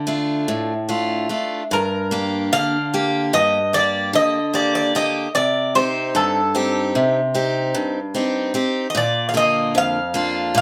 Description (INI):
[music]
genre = greek folk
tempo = 149 BPM (eighths)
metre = 9/8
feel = straight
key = unclear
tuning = A4 = 439 Hz
[part]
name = Greek bouzouki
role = melody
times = 0.0-10.6 s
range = A4 to G5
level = -21 LUFS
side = equal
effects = none
[part]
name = picked steel-string acoustic guitar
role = accompaniment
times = 0.0-10.6 s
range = F2 to G4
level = -23 LUFS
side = equal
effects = none
[sound]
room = moderate studio reverb, RT60 0.6 s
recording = none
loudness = -20 LUFS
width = mono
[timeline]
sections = 0.0-1.7 A section; 1.7-10.6 B section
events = speeding up 0.0-10.6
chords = 0.0 Dm; 1.7 Gm; 5.3 Cm; 8.9 Bb